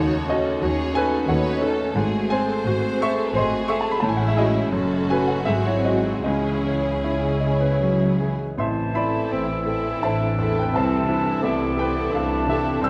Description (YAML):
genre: classical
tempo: 75-91 BPM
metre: 3/4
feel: rubato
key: C# minor, A minor from 8.6 s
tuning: A4 = 441 Hz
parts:
  - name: bright baby grand piano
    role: melody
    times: 0.0-12.9 s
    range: A1 to E6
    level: -26 LUFS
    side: equal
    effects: none
  - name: rich studio violin section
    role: melody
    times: 0.0-12.8 s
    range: G#4 to C#5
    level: -35 LUFS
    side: equal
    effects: none
  - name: warm studio violin section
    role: second line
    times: 0.0-12.8 s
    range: E4 to B#4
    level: -35 LUFS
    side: equal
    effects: none
  - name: rich studio viola section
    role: accompaniment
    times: 0.0-12.8 s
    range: A3 to G#4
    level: -34 LUFS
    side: equal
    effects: none
  - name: mellow French horn section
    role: sustained chords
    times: 0.0-12.9 s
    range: C#3 to C#4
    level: -30 LUFS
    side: equal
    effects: none
  - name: warm studio cello section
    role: bass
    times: 0.0-12.9 s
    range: F#2 to D#3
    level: -31 LUFS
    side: equal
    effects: none
  - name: warm studio double bass section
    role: bass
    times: 0.0-12.9 s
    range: F#1 to D#2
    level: -32 LUFS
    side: equal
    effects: none
  - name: silver concert flute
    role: second line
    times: 8.6-12.9 s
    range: G5 to C6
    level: -34 LUFS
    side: equal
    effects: none
  - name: warm clarinet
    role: second line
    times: 8.6-12.9 s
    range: C4 to E4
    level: -32 LUFS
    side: equal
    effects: none
  - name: warm oboe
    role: second line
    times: 8.6-12.9 s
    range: C5 to E5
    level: -34 LUFS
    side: equal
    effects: none
  - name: mellow bassoon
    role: accompaniment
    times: 8.6-12.9 s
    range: E3 to B3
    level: -33 LUFS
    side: equal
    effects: none
room: moderate scoring stage reverb, RT60 1.8 s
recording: none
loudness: -22 LUFS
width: mono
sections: 0.0-8.6 A section; 8.6-12.9 B section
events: none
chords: 0.0 D#m7b5; 2.0 G#7b9; 4.0 Amaj7; 4.7 D#m7b5/F#; 5.5 G#7; 6.3 C#m; 8.6 Am; 10.7 Am/C